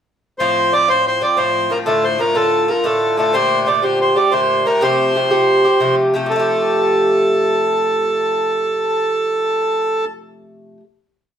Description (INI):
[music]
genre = celtic folk, Celtic slip jig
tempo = 121 BPM (dotted quarters)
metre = 9/8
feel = straight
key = F major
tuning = A4 = 440 Hz
[part]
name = accordion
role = melody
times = 0.4-10.0 s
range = A4 to D5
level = -16 LUFS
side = right 1 dB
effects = none
[part]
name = Irish bouzouki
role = accompaniment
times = 0.4-10.8 s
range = A2 to G4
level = -18 LUFS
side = equal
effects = none
[sound]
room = wet studio reverb, RT60 0.7 s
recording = band playing live in one room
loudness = -14 LUFS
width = side -8 dB against mid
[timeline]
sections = 0.4-6.3 A section; 6.3-9.3 final chord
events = none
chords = 0.4 F; 1.9 Dm; 3.3 Gmadd9; 4.8 Fadd9